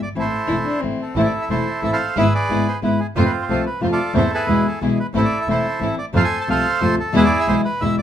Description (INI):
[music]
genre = tango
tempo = 180 BPM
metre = 3/4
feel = rubato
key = A harmonic minor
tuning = A4 = 439 Hz
[part]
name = bandoneon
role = melody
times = 0.0-8.0 s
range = C4 to A5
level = -21 LUFS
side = right 2 dB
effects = none
[part]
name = clear double bass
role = bass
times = 0.0-8.0 s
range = E1 to F2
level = -24 LUFS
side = right 2 dB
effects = none
[part]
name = nylon-string guitar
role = accompaniment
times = 0.2-8.0 s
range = B2 to F4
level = -21 LUFS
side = left 3 dB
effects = none
[part]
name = dark cello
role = second line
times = 0.5-1.2 s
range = C4 to E4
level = -25 LUFS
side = left 3 dB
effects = none
[part]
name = rich studio string section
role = stabs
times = 1.2-8.0 s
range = G#3 to F4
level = -27 LUFS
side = right 2 dB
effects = none
[sound]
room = moderate large studio reverb, RT60 0.9 s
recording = minimal, uncompressed stereo recording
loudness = -17 LUFS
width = side -10 dB against mid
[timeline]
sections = 0.0-1.2 A section; 1.2-8.0 A section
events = none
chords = 0.2 Am; 2.2 E/G#; 3.1 F; 4.1 Am/E; 4.5 E; 5.1 Am; 6.1 F; 7.1 E